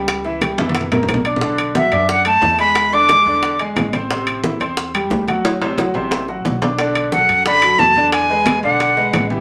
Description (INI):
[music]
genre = latin, salsa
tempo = 179 BPM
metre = 4/4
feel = straight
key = unclear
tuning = A4 = 441 Hz
[part]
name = bright concert grand piano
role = accompaniment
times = 0.0-9.4 s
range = C3 to D6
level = -23 LUFS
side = equal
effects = none
[part]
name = upright bass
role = bass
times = 0.0-9.4 s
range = A1 to F#2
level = -30 LUFS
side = equal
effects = none
[part]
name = bongos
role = percussion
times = 0.1-9.3 s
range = none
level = -27 LUFS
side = equal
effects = none
[part]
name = congas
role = percussion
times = 0.1-9.4 s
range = none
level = -25 LUFS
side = equal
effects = none
[part]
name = timbales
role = percussion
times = 0.1-9.3 s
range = none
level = -26 LUFS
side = equal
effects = none
[part]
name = breathy bright concert flute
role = melody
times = 1.8-3.6, 7.1-9.3 s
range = E5 to D6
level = -15 LUFS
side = equal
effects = none
[sound]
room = wet studio reverb, RT60 0.5 s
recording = none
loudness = -16 LUFS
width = mono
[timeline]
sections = 0.0-6.8 A section; 6.8-9.4 B section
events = drum fill 0.6-1.4, 5.4-6.8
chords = 0.1 C#dim; 0.8 F#7; 1.4 Bm7; 2.8 E7; 4.1 Am7; 5.4 D7; 6.8 Bm7; 8.1 E7